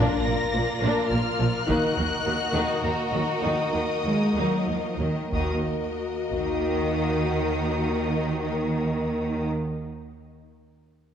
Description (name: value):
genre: cinematic, epic orchestral film score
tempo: 90-106 BPM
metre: 3/4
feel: straight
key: Eb minor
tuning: A4 = 440 Hz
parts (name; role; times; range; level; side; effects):
- clear symphonic violin section; melody; 0.0-9.5 s; Bb5 to Bb6; -34 LUFS; left 3 dB; none
- clear symphonic violin section; second line; 0.0-9.5 s; F4 to Bb4; -32 LUFS; left 2 dB; none
- rich symphonic viola section; accompaniment; 0.0-9.5 s; F3 to Eb4; -31 LUFS; equal; none
- dark French horn section; sustained chords; 0.0-8.5 s; Bb3 to Gb4; -32 LUFS; left 4 dB; none
- rich symphonic string section; sustained chords; 0.0-8.5 s; Bb3 to Eb5; -32 LUFS; left 2 dB; none
- clear symphonic cello section; bass; 0.0-9.5 s; Bb2 to Ab3; -29 LUFS; right 1 dB; none
- clear symphonic double bass section; bass; 0.0-9.5 s; Bb1 to Eb2; -30 LUFS; right 2 dB; none
- taiko ensemble; drums; 1.7-6.6 s; none; -31 LUFS; equal; none
room: wet concert hall reverb, RT60 2.3 s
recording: worn, warbling old tape, cassette tape, warbly pitch drift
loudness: -23 LUFS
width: side -8 dB against mid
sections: 0.0-5.3 A section; 5.3-9.3 B section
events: slowing down 0.8-5.3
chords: 0.0 Bb; 1.7 Ebm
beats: 0.54 1.11 | 1.68 2.25 2.84 | 3.43 4.05 4.68 | 5.33 6.00 6.66 | 7.33 7.99 8.66